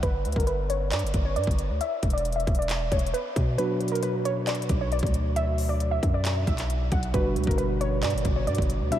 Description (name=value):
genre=hip hop, trap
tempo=135 BPM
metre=4/4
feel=half-time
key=unclear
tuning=A4 = 440 Hz
part: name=warbly dusty pluck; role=melody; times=0.0-9.0 s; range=A#4 to F#5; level=-29 LUFS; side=equal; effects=chorus, low-pass filter, analog delay
part: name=distorted 808-style bass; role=bass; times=0.0-8.9 s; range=E1 to B2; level=-28 LUFS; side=equal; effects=distortion
part: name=trap drum kit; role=drums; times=0.0-9.0 s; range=handclaps, hi-hat, kick drum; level=-29 LUFS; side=equal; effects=none
part: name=tine electric piano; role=accompaniment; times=3.6-9.0 s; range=B2 to F#4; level=-30 LUFS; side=right 2 dB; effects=medium stereo tremolo, low-pass filter
room=moderate huge ambient reverb, RT60 8.9 s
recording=dreamy mix soaked in reverb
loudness=-23 LUFS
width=side -11 dB against mid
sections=0.0-9.0 A section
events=filter sweep 0.0-3.6; kick muted 3.6-4.0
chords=0.0 G5; 1.8 E5; 3.6 Bm; 7.1 Gmaj7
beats=| 0.03 0.47 0.92 1.36 | 1.81 2.25 2.69 3.14 | 3.58 4.03 4.47 4.92 | 5.36 5.81 6.25 6.70 | 7.14 7.58 8.03 8.47 | 8.92